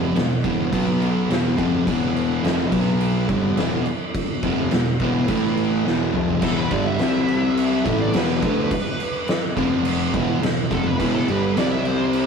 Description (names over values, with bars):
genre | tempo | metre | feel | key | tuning
stoner and doom metal | 105 BPM | 4/4 | straight | E minor | A4 = 439 Hz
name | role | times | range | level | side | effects
fuzz guitar | riff | 0.0-12.3 s | E2 to D4 | -20 LUFS | equal | distortion
growling fingered electric bass | bass | 0.0-12.3 s | E1 to D2 | -30 LUFS | equal | overdrive
oversized low-tuned drum kit | drums | 0.2-12.3 s | crash cymbal, kick drum, snare drum, toms | -24 LUFS | equal | none
fuzz lead guitar | melody | 6.4-12.3 s | A4 to E5 | -28 LUFS | right 2 dB | wah, distortion
room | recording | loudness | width
moderate studio ambience, RT60 0.5 s | rough rehearsal-room recording | -18 LUFS | side -6 dB against mid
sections
0.0-6.4 A section; 6.4-12.3 B section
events
drum fill 5.9-6.4; lead electric guitar solo 6.4-12.3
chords
0.0 E5; 0.7 B5; 1.3 E5; 2.7 B5; 3.3 Em; 5.3 A5; 5.9 E5; 6.4 Em; 7.0 C5; 7.9 E5; 9.6 F5; 10.1 Em; 11.6 C5